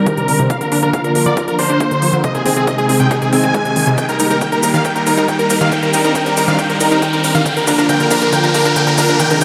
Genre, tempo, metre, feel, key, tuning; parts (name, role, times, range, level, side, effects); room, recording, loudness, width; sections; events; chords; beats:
uplifting trance; 138 BPM; 4/4; straight; A4 = 441 Hz
big supersaw lead; melody; 0.0-9.4 s; Ab4 to Ab5; -19 LUFS; equal; sidechain pumping, low-pass filter, tape echo
analog string pad; sustained chords; 0.0-9.4 s; C3 to Bb4; -21 LUFS; equal; ensemble chorus, sidechain pumping
analog pluck; arpeggios; 0.0-9.4 s; C3 to Bb4; -20 LUFS; equal; chorus, sidechain pumping, tape echo
tight sequencer bass; bass; 0.0-9.4 s; G1 to Eb2; -30 LUFS; equal
riser; sound effects; 2.1-9.4 s; -26 LUFS; equal
electronic hi-hat and shaker; drums; 0.1-9.4 s; -25 LUFS; equal; overdrive
electronic kick drum; drums; 0.1-9.4 s; -26 LUFS; equal; high-pass filter on kick, high-pass filter on room
wet lush hall reverb, RT60 1.6 s, digital ambience; dreamy mix soaked in reverb; -14 LUFS; mono
0.0-9.4 A section
build-up 0.0-9.4; filter sweep on synth pluck 0.0-9.4; riser 2.1-9.4; drum fill 4.0-9.4
0.0 Cmadd9; 0.5 Bb; 2.2 Ab; 4.0 Eb; 5.7 Cmadd9; 7.5 Bb
0.07 | 0.50 0.94 1.37 1.80 | 2.24 2.67 3.11 3.54 | 3.98 4.41 4.85 5.28 | 5.72 6.15 6.59 7.02 | 7.46 7.89 8.33 8.76 | 9.20